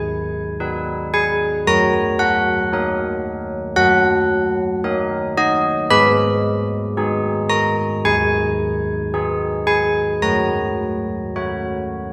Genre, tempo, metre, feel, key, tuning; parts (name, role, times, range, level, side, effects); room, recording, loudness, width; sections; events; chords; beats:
classical, tune for church bells; 56 BPM; 4/4; straight; A4 = 439 Hz
carillon bells; solo; 0.0-12.1 s; D#3 to B5; -19 LUFS; equal
wet concert hall reverb, RT60 1.9 s; recorded in a church or concert hall; -19 LUFS; mono
0.0-12.1 A section
0.0 G#m; 1.7 D#m/F#; 5.9 G#m; 10.2 F#
0.62 | 1.69 2.74 3.80 4.85 | 5.93 6.99 8.05 9.13 | 10.24 11.36